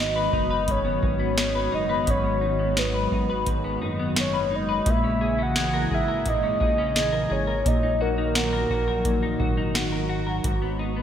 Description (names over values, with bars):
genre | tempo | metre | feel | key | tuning
dream pop | 86 BPM | 4/4 | straight | G# minor | A4 = 440 Hz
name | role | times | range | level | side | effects
soft octave-layered synth lead | melody | 0.0-10.1 s | A#4 to F#5 | -26 LUFS | equal | chorus, phaser, digital delay
hollow soft pad | sustained chords | 0.0-11.0 s | A#2 to F#4 | -29 LUFS | right 1 dB | ensemble chorus
semi-hollow electric guitar | arpeggios | 0.0-11.0 s | G#2 to B4 | -28 LUFS | left 3 dB | analog chorus, digital delay
chorused synth bass | bass | 0.0-11.0 s | F#1 to A#1 | -31 LUFS | equal | none
booming analog drum machine | drums | 0.3-10.6 s | hi-hat, kick drum, snare drum | -26 LUFS | equal | gated reverb
room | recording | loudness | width
moderate lush hall reverb, RT60 2.7 s | bright 1980s-style digital production | -21 LUFS | side -9 dB against mid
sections
0.0-11.0 A section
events
none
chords
0.0 G#m7; 4.9 A#m7b5; 7.7 D#m/A#; 10.4 G#m7